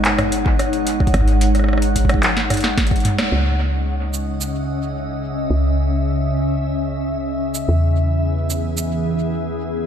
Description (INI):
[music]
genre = IDM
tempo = 110 BPM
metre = 4/4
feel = straight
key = C# minor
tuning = A4 = 440 Hz
[part]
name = glassy FM pad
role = sustained chords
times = 0.0-9.9 s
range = C#3 to F#5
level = -21 LUFS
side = equal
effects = ensemble chorus, built-in reverb
[part]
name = woody FM bass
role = bass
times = 0.0-9.8 s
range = G#1 to E2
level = -21 LUFS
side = equal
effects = none
[part]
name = booming analog drum machine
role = drums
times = 0.0-8.9 s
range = handclaps, hi-hat, rim click, shaker, snare drum, toms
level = -21 LUFS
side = right 1 dB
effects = analog delay
[part]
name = electronic kick drum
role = drums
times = 0.5-3.0 s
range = none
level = -18 LUFS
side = equal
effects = none
[sound]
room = moderate echo chamber reverb, RT60 2.2 s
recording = echo-heavy mix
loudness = -17 LUFS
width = side -8 dB against mid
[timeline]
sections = 0.0-3.3 A section; 3.3-9.9 B section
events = drum fill 2.2-3.3; band accent 3.2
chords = 0.0 G#7sus4; 3.3 C#madd9; 7.7 E